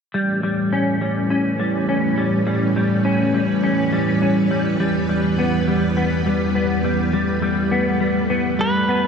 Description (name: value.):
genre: dream pop.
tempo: 103 BPM.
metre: 4/4.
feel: straight.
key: unclear.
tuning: A4 = 440 Hz.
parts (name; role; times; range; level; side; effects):
string machine, full ensemble; sustained chords; 0.1-9.1 s; E2 to B4; -21 LUFS; right 2 dB; ensemble chorus.
semi-hollow electric guitar; arpeggios; 0.1-9.1 s; G3 to C#4; -19 LUFS; left 2 dB; ensemble chorus, tape echo.
clean lap steel guitar; melody; 8.6-9.1 s; B4; -19 LUFS; right 2 dB; none.
room: wet huge ambient reverb, RT60 9.1 s.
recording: none.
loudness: -17 LUFS.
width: side -6 dB against mid.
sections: 0.1-9.1 A section.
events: none.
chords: 0.1 A7; 4.8 Em.